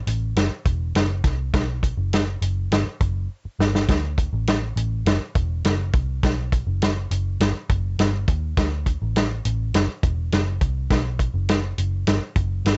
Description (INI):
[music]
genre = uptempo 1960s-style soul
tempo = 102 BPM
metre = 4/4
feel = straight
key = unclear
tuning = A4 = 440 Hz
[part]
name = vintage muted picked electric bass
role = bass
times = 0.1-12.8 s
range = E1 to Eb2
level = -26 LUFS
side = equal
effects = none
[part]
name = warm soul drum kit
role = drums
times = 0.1-12.8 s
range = hi-hat, kick drum, snare drum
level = -24 LUFS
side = equal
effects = none
[sound]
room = light reverb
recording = dark, warm production, nothing above 7.9 kHz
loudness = -23 LUFS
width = mono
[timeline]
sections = 0.0-12.8 A section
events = drum fill 3.3-3.9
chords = none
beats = 0.36 0.95 | 1.54 2.12 2.71 3.30 | 3.89 4.47 5.06 5.65 | 6.23 6.82 7.40 7.99 | 8.57 9.15 9.74 10.32 | 10.90 11.48 12.07 12.65